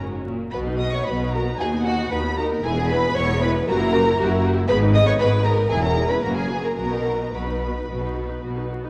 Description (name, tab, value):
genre	quick classical-period movement for string orchestra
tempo	115 BPM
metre	4/4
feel	uneven beats, rubato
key	B major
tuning	A4 = 438 Hz
part	rich symphonic viola section	accompaniment	0.0-8.9 s	G#3 to B4	-30 LUFS	equal	none
part	rich symphonic cello section	bass	0.0-8.9 s	D#2 to B2	-29 LUFS	equal	none
part	rich symphonic double bass section	bass	0.0-8.9 s	E1 to D#2	-28 LUFS	equal	none
part	warm symphonic violin section	melody	0.5-8.4 s	F#5 to D#6	-32 LUFS	equal	none
part	rich symphonic violin section	second line	0.5-8.4 s	F#4 to D#5	-26 LUFS	equal	none
room	wet concert hall reverb, RT60 1.8 s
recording	worn, warbling old tape, cassette tape, vinyl crackle, warbly pitch drift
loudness	-22 LUFS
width	mono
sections	0.0-8.9 A section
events	none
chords	0.0 F#; 0.5 B; 1.6 B/D#; 2.6 E; 3.7 F#7b9; 4.7 G#m; 5.7 C#m/E; 6.2 F#; 6.8 B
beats	0.00 | 0.54 1.07 1.59 2.11 | 2.63 3.16 3.68 4.19 | 4.70 5.21 5.72 6.24 | 6.78 7.34 7.89 8.44